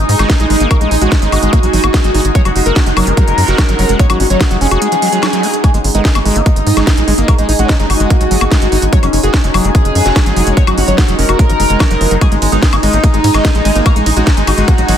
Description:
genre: psychedelic trance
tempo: 146 BPM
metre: 4/4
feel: straight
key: unclear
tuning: A4 = 440 Hz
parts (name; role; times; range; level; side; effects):
- overdriven synth lead; melody; 0.0-15.0 s; G#3 to C#5; -17 LUFS; equal; chorus, phaser, sidechain pumping, tape echo
- bubbling stepped-filter texture; sustained chords; 0.0-15.0 s; G#3 to D#4; -19 LUFS; equal; chorus, built-in reverb, sidechain pumping
- tight sequencer bass; bass; 0.0-14.9 s; F#1 to G#2; -14 LUFS; equal; none
- airy breathy pad; texture; 0.0-15.0 s; C#4 to G#5; -23 LUFS; right 1 dB; chorus, sidechain pumping
- garage drum kit; drums; 0.1-15.0 s; hi-hat, ride cymbal, snare drum, woodblock; -18 LUFS; left 1 dB; none
- overdriven acid bass; riff; 0.2-14.9 s; E#3 to F#4; -20 LUFS; moving between left 3 dB and right 4 dB; distortion, auto-pan, sidechain pumping, tape echo
- electronic kick drum; drums; 0.3-14.8 s; none; -13 LUFS; equal; none
- formant-sweep wobble bass; second line; 0.4-14.5 s; A#3 to D#4; -30 LUFS; right 3 dB; none
- swell; sound effects; 5.0-5.6 s; none; -22 LUFS; left 1 dB; none
room: little or no reverb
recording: dense, heavily limited modern master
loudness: -9 LUFS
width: side -9 dB against mid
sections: 0.0-15.0 A section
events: swell 5.0-5.6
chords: 0.0 G#5; 2.4 F#5; 5.6 G#5; 8.9 F#5; 12.2 G#5

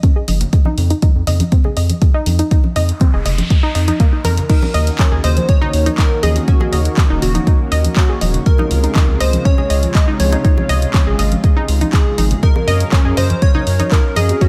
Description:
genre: progressive house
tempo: 121 BPM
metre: 4/4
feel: straight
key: Eb dorian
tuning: A4 = 438 Hz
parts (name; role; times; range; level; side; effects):
- analog pluck; arpeggios; 0.0-14.5 s; Bb3 to Eb5; -25 LUFS; equal; chorus, sidechain pumping, delay
- big-room dance drum kit; drums; 0.0-14.5 s; crash cymbal, handclaps, hi-hat; -27 LUFS; equal; sidechain pumping on hats, studio reverb, sidechain pumping on cymbals
- electronic kick drum; drums; 0.0-14.5 s; none; -14 LUFS; equal; studio reverb
- round analog bass; bass; 0.3-14.3 s; Eb1 to Gb2; -18 LUFS; equal; sidechain pumping
- congas and bongos; percussion; 0.3-14.4 s; none; -27 LUFS; equal; sidechain pumping on perc
- noise sweep; sound effects; 2.9-4.5 s; none; -32 LUFS; equal; none
- plucky unison lead; melody; 4.5-14.5 s; Gb4 to Eb5; -24 LUFS; equal; digital delay
- lush unison pad; sustained chords; 4.5-14.5 s; C3 to F5; -26 LUFS; equal; chorus, sidechain pumping
room: digital ambience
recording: none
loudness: -14 LUFS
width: mono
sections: 0.0-14.5 A section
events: filter sweep on synth pluck 0.0-14.5; noise sweep 2.9-4.5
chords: 0.0 Gb5; 0.5 F7(no3); 4.5 Ebm7; 8.5 Dbmaj7; 12.4 Gbmaj7

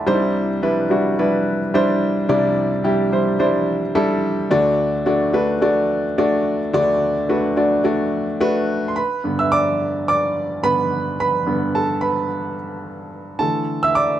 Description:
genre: pop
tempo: 108 BPM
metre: 4/4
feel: swing 56% on 16ths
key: unclear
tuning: A4 = 440 Hz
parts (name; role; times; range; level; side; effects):
- warm baby grand piano; solo; 0.0-14.2 s; C2 to E6; -17 LUFS; equal; none
room: moderate large studio reverb, RT60 1.0 s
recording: nothing above 10.9 kHz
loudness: -17 LUFS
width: side -11 dB against mid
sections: 0.0-9.0 A section; 9.0-14.2 B section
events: grand piano solo 9.0-14.2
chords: 0.1 Cadd9; 4.5 D; 9.0 G; 13.4 Dsus2

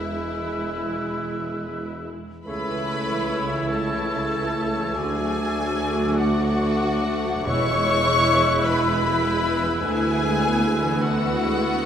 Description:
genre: classical, slow romantic movement for symphony orchestra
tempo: 44-52 BPM (dotted quarters)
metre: 12/8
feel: rubato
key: unclear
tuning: A4 = 442 Hz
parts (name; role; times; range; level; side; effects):
- warm studio violin section; melody; 0.0-11.9 s; E5 to C#6; -27 LUFS; left 3 dB; none
- clear clarinet; second line; 0.0-11.9 s; E4 to F#4; -32 LUFS; right 1 dB; none
- clear oboe; second line; 0.0-11.9 s; B4 to D5; -34 LUFS; right 1 dB; none
- silver concert flute; second line; 0.0-11.9 s; D6 to E6; -31 LUFS; left 3 dB; none
- warm symphonic violin section; second line; 0.0-11.9 s; E4 to C#5; -31 LUFS; left 1 dB; none
- mellow bassoon; accompaniment; 0.0-11.9 s; G#3 to B3; -32 LUFS; right 1 dB; none
- rich symphonic viola section; accompaniment; 0.0-11.9 s; C#3 to F#4; -30 LUFS; equal; none
- clear tuba; bass; 0.0-11.9 s; E1 to D2; -32 LUFS; right 2 dB; none
- dark symphonic cello section; bass; 0.0-11.9 s; C#2 to E2; -30 LUFS; right 2 dB; none
- warm chamber double bass section; bass; 0.0-11.9 s; E1 to D2; -32 LUFS; right 2 dB; none
- warm French horn section; sustained chords; 0.7-11.9 s; G#3 to E4; -32 LUFS; left 3 dB; none
- timpani; percussion; 7.5-8.6 s; E2; -33 LUFS; equal; none
room: wet recital hall reverb, RT60 1.5 s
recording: recorded in a church or concert hall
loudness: -20 LUFS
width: side -8 dB against mid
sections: 0.0-11.9 A section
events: none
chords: 0.0 E; 2.5 A/C#; 5.0 D; 7.5 E; 9.8 E7/D

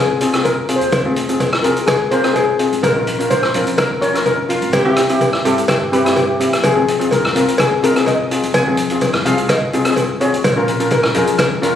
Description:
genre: calypso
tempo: 126 BPM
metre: 4/4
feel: straight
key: unclear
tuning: A4 = 445 Hz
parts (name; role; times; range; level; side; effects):
- steel pan; melody; 0.0-11.4 s; G4 to Ab5; -19 LUFS; left 2 dB; none
- steel pan; accompaniment; 0.0-11.7 s; C4 to Bb4; -18 LUFS; left 2 dB; none
- upright bass; bass; 0.0-11.8 s; F1 to G2; -26 LUFS; left 1 dB; none
- street-band drum kit; drums; 0.2-11.7 s; hi-hat, kick drum, rim click; -20 LUFS; equal; none
- cowbell; percussion; 0.4-11.5 s; none; -20 LUFS; equal; none
- breathy alto saxophone; second line; 4.5-5.3 s; F4 to G4; -18 LUFS; right 1 dB; none
room: moderate small room reverb, RT60 0.5 s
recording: recorded on a phone in the room, studio reverb, compression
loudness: -13 LUFS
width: side -9 dB against mid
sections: 0.0-11.8 A section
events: steel pan solo 0.0-11.8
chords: 0.0 Fm; 2.8 Bbm; 4.7 C; 6.6 Fm7; 10.4 Bbm

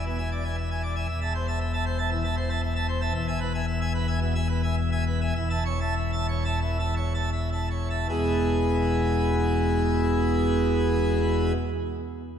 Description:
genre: classical, organ toccata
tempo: 76-118 BPM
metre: 4/4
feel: straight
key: E major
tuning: A4 = 438 Hz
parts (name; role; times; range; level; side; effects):
- pipe organ, plenum; solo; 0.0-11.5 s; E1 to A5; -23 LUFS; equal; none
room: wet church reverb, RT60 2.8 s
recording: minimal, uncompressed stereo recording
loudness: -23 LUFS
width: side -8 dB against mid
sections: 0.0-8.1 A section; 8.1-12.4 B section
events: slowing down 2.1-8.1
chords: 0.0 E7; 1.1 Am/E; 3.1 E; 5.4 A/E; 8.1 E

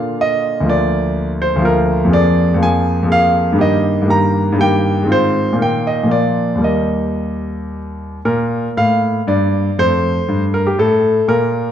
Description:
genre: classical, baroque-style suite movement for grand piano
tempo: 111-126 BPM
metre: 3/4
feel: rubato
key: Eb major, Bb major from 8.3 s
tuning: A4 = 440 Hz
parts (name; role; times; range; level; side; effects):
- warm grand piano; solo; 0.0-11.7 s; D2 to Bb5; -13 LUFS; equal; none
room: wet recital hall reverb, RT60 1.3 s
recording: dark, warm production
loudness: -13 LUFS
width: side -9 dB against mid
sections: 0.0-8.3 A section; 8.3-11.7 A section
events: none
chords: 0.0 Bb; 0.7 Bb/D; 2.1 Bb7/F; 3.6 Eb/G; 5.1 Fm7/Ab; 5.6 Eb/Bb; 6.1 Bb; 6.7 Eb; 8.3 Bb; 9.8 F

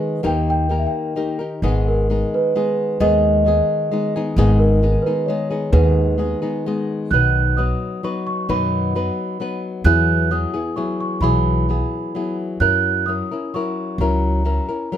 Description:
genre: mexican folk, mariachi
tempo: 131 BPM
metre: 3/4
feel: straight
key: G# minor, B major from 7.1 s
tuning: A4 = 441 Hz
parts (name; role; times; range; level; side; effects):
- large celesta; melody; 0.0-15.0 s; A#4 to F#6; -21 LUFS; right 3 dB; none
- flamenco guitar; accompaniment; 0.0-15.0 s; G#2 to B4; -22 LUFS; left 3 dB; none
- upright bass; bass; 0.2-14.6 s; G#1 to F#2; -19 LUFS; equal; none
room: light reverb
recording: close, detailed microphones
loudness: -17 LUFS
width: side -10 dB against mid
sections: 0.0-7.1 A section; 7.1-15.0 B section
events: none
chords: 0.2 D#; 1.6 G#m; 7.1 B; 9.9 Eadd9; 12.6 F#7

